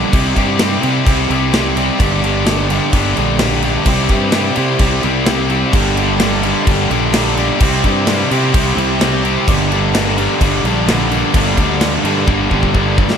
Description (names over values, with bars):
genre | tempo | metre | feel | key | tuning
quiet-loud alternative rock | 128 BPM | 4/4 | straight | G dorian | A4 = 440 Hz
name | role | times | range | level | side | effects
distorted electric guitar | riff | 0.0-13.2 s | G2 to G4 | -17 LUFS | left 11 dB | overdrive
thick fuzz guitar | riff | 0.0-13.2 s | G2 to C4 | -19 LUFS | right 12 dB | distortion
fuzz fingered electric bass | bass | 0.0-13.1 s | G1 to C3 | -19 LUFS | equal | overdrive
big rock drum kit | drums | 0.1-13.2 s | crash cymbal, kick drum, snare drum | -18 LUFS | equal | none
heavy high-gain guitar | riff | 5.7-13.2 s | G2 to C4 | -22 LUFS | right 1 dB | distortion
room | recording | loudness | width
light reverb, small room ambience | lossy compression artefacts | -12 LUFS | side -7 dB against mid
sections
0.0-13.2 A section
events
drum fill 12.3-13.2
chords
0.1 C; 2.0 Gm; 3.9 C; 5.7 Gm; 7.6 C; 9.5 Gm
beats
| 0.13 0.60 1.06 1.53 | 2.00 2.46 2.93 3.40 | 3.87 4.33 4.80 5.27 | 5.74 6.20 6.67 7.14 | 7.60 8.07 8.54 9.01 | 9.47 9.94 10.40 10.87 | 11.34 11.80 12.27 12.74